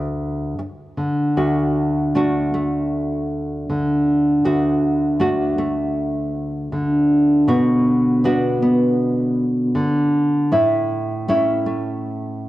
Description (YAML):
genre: folk, solo fingerstyle acoustic guitar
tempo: 79 BPM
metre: 4/4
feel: straight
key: D major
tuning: A4 = 440 Hz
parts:
  - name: nylon-string guitar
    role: solo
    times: 0.0-12.5 s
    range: D2 to F#4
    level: -17 LUFS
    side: equal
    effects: none
room: light reverb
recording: worn, warbling old tape, cassette tape, warbly pitch drift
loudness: -17 LUFS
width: side -15 dB against mid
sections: 0.0-1.4 A section; 1.4-12.5 B section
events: none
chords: 0.0 D5; 1.4 D; 7.5 Bm; 10.5 A